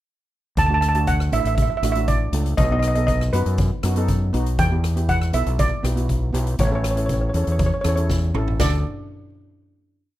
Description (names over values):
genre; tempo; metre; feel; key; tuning
calypso; 120 BPM; 4/4; straight; D major; A4 = 440 Hz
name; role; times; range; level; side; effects
steel pan; melody; 0.6-8.8 s; B4 to A5; -24 LUFS; right 2 dB; none
growling fingered electric bass; bass; 0.6-8.8 s; A1 to F#2; -21 LUFS; equal; overdrive
street-band drum kit; drums; 0.6-8.7 s; crash cymbal, hi-hat, kick drum, rim click, snare drum, toms; -25 LUFS; equal; none
steel pan; accompaniment; 0.7-8.8 s; A3 to A4; -28 LUFS; right 2 dB; none
room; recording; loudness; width
little or no reverb; rough home demo mix; -18 LUFS; side -14 dB against mid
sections
0.6-8.6 verse; 8.6-10.2 final chord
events
drum fill 8.1-8.6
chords
0.6 D; 2.6 B7; 4.6 Em7; 6.6 A; 8.6 D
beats
| 0.57 1.08 1.58 2.08 | 2.58 3.08 3.59 4.09 | 4.59 5.09 5.59 6.09 | 6.59 7.09 7.59 8.09 | 8.59